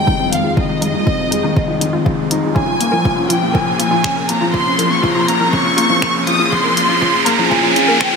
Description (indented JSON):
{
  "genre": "piano and strings electronica",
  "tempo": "121 BPM",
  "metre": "4/4",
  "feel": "straight",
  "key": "unclear",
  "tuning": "A4 = 437 Hz",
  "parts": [
    { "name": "dark studio violin section", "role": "melody", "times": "0.0-8.2 s", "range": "Eb5 to Eb6", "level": "-17 LUFS", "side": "equal", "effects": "none" },
    { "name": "granular cloud pad", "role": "sustained chords", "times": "0.0-8.2 s", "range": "F2 to Ab4", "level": "-22 LUFS", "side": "equal", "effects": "built-in reverb" },
    { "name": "felt-muted upright piano", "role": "riff", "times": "0.0-8.2 s", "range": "Eb3 to Eb4", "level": "-19 LUFS", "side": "left 3 dB", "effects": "none" },
    { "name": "riser", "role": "sound effects", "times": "0.0-8.2 s", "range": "none", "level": "-20 LUFS", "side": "right 2 dB", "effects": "none" },
    { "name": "analog pluck", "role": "arpeggios", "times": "0.1-8.2 s", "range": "Eb4 to F5", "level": "-24 LUFS", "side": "equal", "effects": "chorus, sidechain pumping, ping-pong delay" },
    { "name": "electronic kick drum", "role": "drums", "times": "0.1-8.1 s", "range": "none", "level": "-20 LUFS", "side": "right 1 dB", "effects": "none" },
    { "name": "deep house drum kit", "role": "drums", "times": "0.3-8.1 s", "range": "finger snaps, hi-hat", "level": "-20 LUFS", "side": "equal", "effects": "none" }
  ],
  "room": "wet lush hall reverb, RT60 2.0 s",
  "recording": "high-pass filter",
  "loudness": "-13 LUFS",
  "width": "side -5 dB against mid",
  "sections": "0.0-8.2 A section",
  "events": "build-up 0.0-8.2; riser 0.0-8.2; filter sweep on synth arpeggio sound 0.0-8.2; filter sweep 0.0-8.2",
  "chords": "0.0 Fm7; 2.6 Bbm7",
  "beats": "0.08 | 0.57 1.07 1.56 2.06 | 2.56 3.05 3.55 4.04 | 4.54 5.04 5.53 6.03 | 6.52 7.02 7.51 8.01"
}